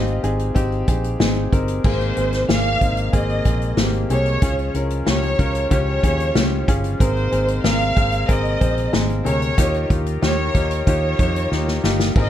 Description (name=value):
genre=piano-driven pop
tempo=93 BPM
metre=4/4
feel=straight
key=unclear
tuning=A4 = 436 Hz
part: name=warm symphonic violin section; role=melody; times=0.0-12.3 s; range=C5 to F5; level=-24 LUFS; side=right 1 dB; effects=none
part: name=clear concert grand piano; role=accompaniment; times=0.0-12.3 s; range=Ab2 to C5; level=-24 LUFS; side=left 2 dB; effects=none
part: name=vintage muted fingered electric bass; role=bass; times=0.0-12.3 s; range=G1 to F2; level=-22 LUFS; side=equal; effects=none
part: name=unplugged drum kit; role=drums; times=0.1-12.3 s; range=crash cymbal, hi-hat, kick drum, snare drum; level=-20 LUFS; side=equal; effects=none
part: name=bright tonewheel organ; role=sustained chords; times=1.8-12.3 s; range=C3 to Bb4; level=-33 LUFS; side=right 2 dB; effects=none
room=light reverb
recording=dark, warm production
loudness=-17 LUFS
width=side -11 dB against mid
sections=0.0-1.8 A section; 1.8-12.3 B section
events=drum fill 11.5-12.2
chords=0.0 Ab; 1.8 Abadd9; 4.4 Db; 7.0 Abadd9; 9.6 Ebadd9